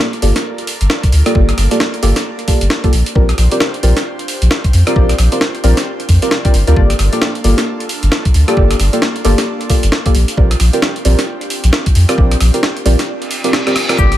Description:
UK garage, two-step garage; 133 BPM; 4/4; swing 60% on 16ths; A4 = 440 Hz
airy breathy pad; sustained chords; 0.0-14.2 s; Bb3 to D5; -27 LUFS; right 1 dB; chorus, sidechain pumping
deep mellow chord stab; stabs; 0.0-14.1 s; Bb3 to D5; -18 LUFS; equal; chorus, dub echo
breakbeat sampler-style drum kit; drums; 0.0-14.2 s; cabasa, hi-hat, rim click, snare drum; -18 LUFS; equal
soft dub sub bass; bass; 0.2-14.2 s; G1 to F2; -11 LUFS; equal
electronic kick drum; drums; 1.0-14.1 s; -13 LUFS; equal
reverse cymbal; sound effects; 13.2-14.0 s; -23 LUFS; right 1 dB
concert harp; melody; 14.0-14.2 s; G4; -16 LUFS; left 8 dB; vintage 12-bit sampler grit
light reverb, digital ambience; vinyl crackle; -11 LUFS; side -13 dB against mid
0.0-14.2 A section
break 13.1-14.0; reverse cymbal 13.2-14.0; drum fill 13.5-14.0
0.0 Gm7; 2.9 Bb69; 6.8 Gm7; 10.1 Bb69

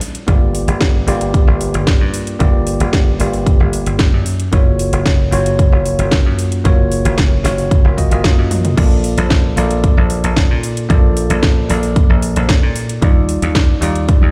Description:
nu-disco, nu disco; 113 BPM; 4/4; straight; Bb major; A4 = 441 Hz
house drum kit; drums; 0.0-14.2 s; crash cymbal, hi-hat, snare drum, toms; -24 LUFS; equal
bell-like tine electric piano; accompaniment; 0.3-14.3 s; G3 to Eb5; -22 LUFS; equal; low-pass filter, dub echo
dry thumbed slap bass; bass; 0.3-14.3 s; Gb1 to Bb2; -19 LUFS; equal
electronic kick drum; drums; 0.3-14.2 s; -14 LUFS; equal
digital ambience; played on a big sound system in a bare room, large studio reverb; -14 LUFS; mono
0.0-14.3 A section
drum fill 8.5
0.0 Gm7; 4.3 Gbmaj7; 8.8 Bbmaj7; 13.0 Ebmaj9

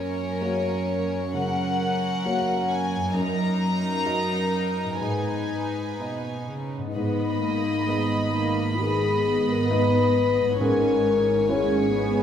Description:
cinematic, emotional film score for orchestra; 61-69 BPM; 4/4; rubato; G# minor; A4 = 439 Hz
warm symphonic violin section; melody; 0.0-12.2 s; C#5 to B5; -30 LUFS; left 1 dB
warm symphonic violin section; second line; 0.0-12.2 s; C#4 to D#5; -32 LUFS; equal
warm baby grand piano; accompaniment; 0.0-12.2 s; F#2 to D#5; -30 LUFS; equal
concert harp; arpeggios; 0.0-12.2 s; F#2 to D#5; -34 LUFS; left 5 dB
warm symphonic cello section; bass; 0.0-12.2 s; F#2 to C#3; -29 LUFS; right 3 dB
dark symphonic viola section; accompaniment; 7.0-12.2 s; G#3 to C#4; -29 LUFS; right 3 dB
dark French horn section; sustained chords; 7.0-12.2 s; D#4 to B4; -24 LUFS; left 5 dB
warm symphonic double bass section; bass; 7.0-12.2 s; G#1; -32 LUFS; right 2 dB
wet recital hall reverb, RT60 1.7 s; recorded in a church or concert hall; -22 LUFS; side -9 dB against mid
0.0-7.0 A section; 7.0-12.2 A section
0.0 F#; 3.1 D#m/F#; 5.0 G#m; 7.0 G#madd9; 10.6 C#m/G#

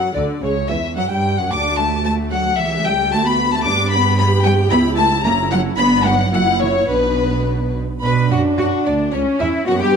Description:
quick classical-period movement for string orchestra; 111 BPM; 2/4; rubato; B minor; A4 = 440 Hz
warm chamber violin section; melody; 0.0-10.0 s; C#4 to D6; -19 LUFS; left 5 dB
warm chamber violin section; second line; 0.0-10.0 s; B4 to D6; -25 LUFS; left 2 dB
dark chamber viola section; accompaniment; 0.0-10.0 s; C#3 to G4; -23 LUFS; right 3 dB
warm chamber cello section; bass; 0.1-10.0 s; B2 to B4; -21 LUFS; right 1 dB
clear chamber double bass section; bass; 0.2-10.0 s; F#1 to B2; -21 LUFS; right 3 dB
light reverb; close, detailed microphones; -15 LUFS; side -6 dB against mid
0.0-8.0 A section; 8.0-10.0 A section
0.4 C#m; 1.0 N.C.; 1.5 D; 2.6 A7/C#; 3.1 D; 3.7 G; 4.7 C#m7b5; 5.2 F#7; 5.8 G; 6.3 F#7; 6.9 Bm; 9.1 C#m

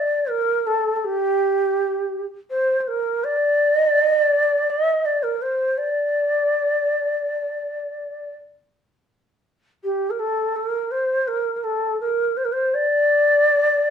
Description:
arabic; 82 BPM; 4/4; straight; D maqam bayati; A4 = 440 Hz
mellow ney; solo; 0.0-13.9 s; G4 to Eb5+47c; -18 LUFS; equal; slapback echo
moderate small room reverb, RT60 0.6 s; -18 LUFS; side -7 dB against mid
0.0-9.1 A section; 9.1-13.9 B section

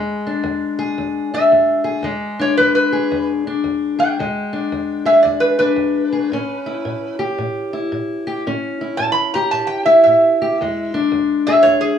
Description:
acoustic country blues, solo or duo; 112 BPM; 4/4; swing 63% on 8ths; E mixolydian; A4 = 441 Hz
fingerpicked steel-string acoustic guitar; accompaniment; 0.0-12.0 s; E2 to G#4; -20 LUFS; left 4 dB
metal-body resonator slide guitar; melody; 1.3-12.0 s; G#4 to B5; -14 LUFS; right 1 dB; plate reverb
moderate studio reverb, RT60 0.6 s; small room ambience; -15 LUFS; side -8 dB against mid
0.0-12.0 A section
0.0 E7; 6.3 A7; 10.6 E7

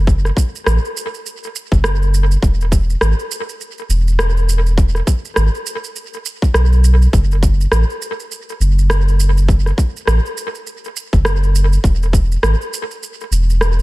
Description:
organic downtempo; 102 BPM; 4/4; swing 59% on 16ths; A4 = 443 Hz
warm sub bass; bass; 0.0-13.8 s; E1 to B1; -13 LUFS; equal
electronic kick drum; drums; 0.1-12.3 s; -14 LUFS; equal; overdrive, studio reverb
electronic shaker and rim click; drums; 0.1-13.8 s; -22 LUFS; right 1 dB; overdrive, studio reverb, tape echo
digital ambience; echo-heavy mix; -13 LUFS; side -20 dB against mid
0.0-13.8 A section

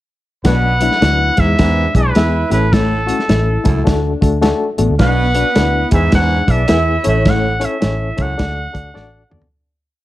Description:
uptempo 1960s-style soul; 106 BPM; 4/4; swing 63% on 8ths; A4 = 436 Hz
mellow horn section; second line; 0.4-7.1 s; G#3 to E5; -22 LUFS; right 4 dB
barky reed electric piano; accompaniment; 0.4-9.5 s; F#3 to D5; -20 LUFS; left 4 dB; overdrive, fast tremolo
vintage muted fingered electric bass; bass; 0.4-9.4 s; A1 to E2; -17 LUFS; equal
warm soul drum kit; drums; 0.4-9.5 s; hi-hat, kick drum, snare drum, toms; -16 LUFS; equal
clear trumpet; melody; 0.5-9.3 s; A4 to F#5; -19 LUFS; equal
breathy baritone saxophone; riff; 0.5-8.3 s; F#2 to B2; -24 LUFS; right 4 dB
mellow electric guitar; riff; 0.5-9.4 s; A3 to E4; -26 LUFS; left 8 dB
moderate large studio reverb, RT60 0.9 s; dark, warm production; -12 LUFS; side -15 dB against mid
0.5-9.5 verse
fade-out 7.3-9.5; drum fill 9.0-9.5
0.5 Bm; 1.3 E; 2.4 A; 3.9 D; 5.0 Bm; 5.8 E; 7.0 A; 8.4 D

